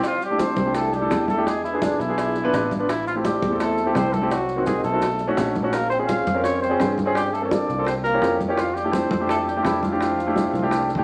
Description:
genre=Afro-Cuban jazz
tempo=169 BPM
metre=4/4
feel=straight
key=unclear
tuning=A4 = 441 Hz
part: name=trombone with cup mute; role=second line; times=0.0-11.0 s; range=D3 to F4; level=-32 LUFS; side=equal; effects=none
part: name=bongos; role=percussion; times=0.0-11.0 s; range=none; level=-32 LUFS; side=equal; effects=none
part: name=congas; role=percussion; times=0.0-11.0 s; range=none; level=-33 LUFS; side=equal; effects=none
part: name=maracas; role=percussion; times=0.0-11.0 s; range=none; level=-47 LUFS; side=equal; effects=none
part: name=dark trumpet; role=melody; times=0.1-11.0 s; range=D4 to F5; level=-29 LUFS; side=equal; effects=none
part: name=warm baby grand piano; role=accompaniment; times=0.3-11.0 s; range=A3 to B4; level=-26 LUFS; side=equal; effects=none
part: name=sustaining fretless electric bass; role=bass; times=0.6-11.0 s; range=A1 to G2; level=-32 LUFS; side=equal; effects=none
room=wet large studio reverb, RT60 1.1 s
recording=vinyl crackle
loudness=-22 LUFS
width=mono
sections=0.0-11.0 A section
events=drum fill 10.4-11.0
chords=0.0 C69; 1.5 E7b9; 2.9 Am7; 4.3 Cm7b5; 5.0 B9; 5.7 Bbm9; 7.2 Gm11; 7.9 C7b9; 8.6 Fmaj13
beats=| 0.05 0.40 0.76 1.11 | 1.47 1.82 2.18 2.53 | 2.89 3.25 3.60 3.96 | 4.31 4.67 5.02 5.38 | 5.73 6.09 6.45 6.80 | 7.16 7.51 7.87 8.22 | 8.58 8.94 9.29 9.65 | 10.00 10.36 10.72

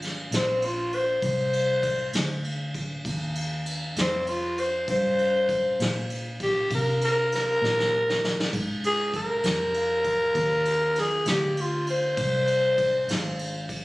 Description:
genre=slow blues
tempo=66 BPM (dotted quarters)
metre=12/8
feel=straight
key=C minor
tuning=A4 = 438 Hz
part: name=vintage muted fingered electric bass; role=bass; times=0.0-13.8 s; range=Ab1 to C3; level=-31 LUFS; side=equal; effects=none
part: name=vintage brush drum kit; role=drums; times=0.0-13.8 s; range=kick drum, ride cymbal, snare drum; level=-31 LUFS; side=equal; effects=none
part: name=growling tenor saxophone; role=melody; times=0.4-13.7 s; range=C4 to C5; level=-24 LUFS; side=left 1 dB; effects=none
room=light reverb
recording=recorded on a phone in the room, studio reverb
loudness=-23 LUFS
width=side -20 dB against mid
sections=0.0-13.8 A section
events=tenor saxophone solo 0.0-13.8; drum fill 7.6-8.5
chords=0.0 Fm; 1.2 Cm7; 8.5 Ab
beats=0.32 | 1.23 2.14 3.05 3.97 | 4.88 5.79 6.70 7.62 | 8.53 9.44 10.35 11.26 | 12.18 13.09

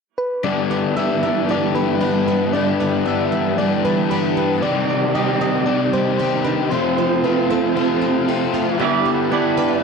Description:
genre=rock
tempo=115 BPM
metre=4/4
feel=straight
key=G mixolydian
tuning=A4 = 441 Hz
part: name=soft struck synth lead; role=melody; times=0.2-9.8 s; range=A4 to E5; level=-24 LUFS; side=equal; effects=chorus, digital delay
part: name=picked plugged-in twelve-string acoustic guitar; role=arpeggios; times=0.4-9.8 s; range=E3 to B4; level=-26 LUFS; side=right 9 dB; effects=analog chorus, digital delay
part: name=electric guitar through a small old amp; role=riff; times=0.4-9.8 s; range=C3 to D5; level=-23 LUFS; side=right 13 dB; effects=reverse reverb
part: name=overdriven electric guitar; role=riff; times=0.4-9.8 s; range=F2 to G4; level=-20 LUFS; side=left 10 dB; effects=lush chorus
part: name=ensemble organ-string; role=sustained chords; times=0.5-9.8 s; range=F2 to B5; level=-26 LUFS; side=right 2 dB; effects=phaser, ensemble chorus
room=moderate scoring stage reverb, RT60 1.6 s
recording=dark, warm production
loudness=-16 LUFS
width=side -5 dB against mid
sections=0.4-8.8 A section; 8.8-9.8 B section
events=none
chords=0.4 G6; 4.6 Cmadd9; 6.7 F; 8.8 G6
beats=| 0.44 0.96 1.49 2.01 | 2.53 3.06 3.58 4.10 | 4.63 5.15 5.67 6.19 | 6.72 7.24 7.76 8.28 | 8.80 9.32

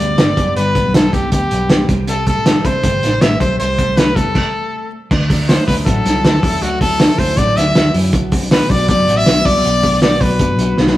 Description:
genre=jangly indie pop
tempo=159 BPM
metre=4/4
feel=straight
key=D mixolydian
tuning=A4 = 442 Hz
part: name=bright trumpet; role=melody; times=0.0-11.0 s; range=F#4 to E5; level=-17 LUFS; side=equal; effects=none
part: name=twelve-string electric guitar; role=arpeggios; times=0.0-11.0 s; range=G2 to F#4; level=-21 LUFS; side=left 3 dB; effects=tape echo
part: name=vintage muted fingered electric bass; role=bass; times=0.0-10.9 s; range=F#1 to F#2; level=-20 LUFS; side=equal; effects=none
part: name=cloth-damped thuddy drum kit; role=drums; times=0.2-11.0 s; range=crash cymbal, hi-hat, kick drum, snare drum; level=-14 LUFS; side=equal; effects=none
room=moderate stone room reverb, RT60 1.2 s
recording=rough rehearsal-room recording, warm saturation, vinyl crackle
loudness=-12 LUFS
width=side -15 dB against mid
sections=0.0-5.1 A section; 5.1-11.0 B section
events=stop 4.4-5.1; drum fill 10.8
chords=0.0 G; 1.9 C5; 5.1 Dadd9; 8.1 Bm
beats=0.18 | 0.56 0.94 1.32 1.70 | 2.08 2.46 2.84 3.22 | 3.60 3.97 4.35 4.73 | 5.11 5.49 5.87 6.24 | 6.62 7.00 7.38 7.75 | 8.13 8.51 8.89 9.26 | 9.64 10.02 10.39 10.77

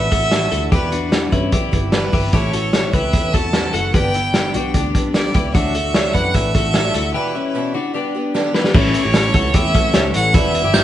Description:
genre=jangly indie pop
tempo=150 BPM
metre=4/4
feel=straight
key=A mixolydian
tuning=A4 = 438 Hz
part: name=bright violin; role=melody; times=0.0-10.8 s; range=B4 to A5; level=-21 LUFS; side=right 1 dB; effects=none
part: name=picked twelve-string acoustic guitar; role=accompaniment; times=0.0-10.8 s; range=E2 to G4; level=-25 LUFS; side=right 4 dB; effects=none
part: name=twelve-string electric guitar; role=arpeggios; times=0.0-10.8 s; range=B3 to C#5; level=-22 LUFS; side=left 5 dB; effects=none
part: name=vintage muted picked electric bass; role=bass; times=0.0-10.8 s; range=E1 to G2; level=-23 LUFS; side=equal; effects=none
part: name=vintage drum kit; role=drums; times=0.1-10.8 s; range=crash cymbal, hi-hat, kick drum, snare drum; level=-17 LUFS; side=equal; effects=none
part: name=soft string machine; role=sustained chords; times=9.4-10.8 s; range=E3 to G4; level=-29 LUFS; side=left 1 dB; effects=none
part: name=glockenspiel with brass mallets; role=second line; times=10.7-10.8 s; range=G6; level=-17 LUFS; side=right 3 dB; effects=none
room=moderate large studio reverb, RT60 1.2 s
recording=band playing live in one room, nothing above 10.7 kHz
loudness=-15 LUFS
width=side -12 dB against mid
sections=0.0-8.8 A section; 8.8-10.8 B section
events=break 7.2-8.8; drum fill 8.4-8.8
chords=0.0 Dadd9; 0.7 Em; 2.3 A; 3.9 G; 5.5 Dadd9; 7.2 Em; 8.0 G; 8.8 A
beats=0.32 | 0.72 1.12 1.53 1.93 | 2.33 2.73 3.14 3.54 | 3.94 4.34 4.75 5.15 | 5.55 5.95 6.35 6.75 | 7.15 7.55 7.95 8.35 | 8.75 9.15 9.55 9.95 | 10.34 10.74

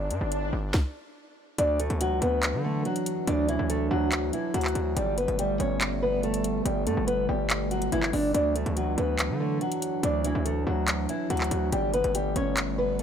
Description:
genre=hip hop, trap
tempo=142 BPM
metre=4/4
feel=half-time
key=D major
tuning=A4 = 441 Hz
part: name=distorted 808-style bass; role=bass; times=0.0-13.0 s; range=G1 to D3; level=-29 LUFS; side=equal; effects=distortion
part: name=swell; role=sound effects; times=0.0-0.7 s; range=none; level=-34 LUFS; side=left 1 dB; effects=none
part: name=trap drum kit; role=drums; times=0.1-13.0 s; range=handclaps, hi-hat, kick drum, snare drum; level=-30 LUFS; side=equal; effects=none
part: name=fingerpicked steel-string acoustic guitar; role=melody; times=1.6-13.0 s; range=E3 to D5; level=-28 LUFS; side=left 1 dB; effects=low-pass filter
part: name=dark analog pad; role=sustained chords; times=1.6-13.0 s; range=E3 to D4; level=-32 LUFS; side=right 3 dB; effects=lush chorus
room=little or no reverb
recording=none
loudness=-24 LUFS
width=side -8 dB against mid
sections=0.0-1.6 A section; 1.6-13.0 B section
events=break 0.0-1.6; swell 0.0-1.6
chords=0.0 N.C.; 1.6 Dadd9; 5.0 Gadd9; 8.3 Dadd9; 11.7 Gadd9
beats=0.32 0.74 1.16 | 1.58 2.01 2.43 2.85 | 3.27 3.70 4.12 4.54 | 4.96 5.39 5.81 6.23 | 6.65 7.08 7.50 7.92 | 8.34 8.77 9.19 9.61 | 10.03 10.46 10.88 11.30 | 11.72 12.15 12.57 12.99

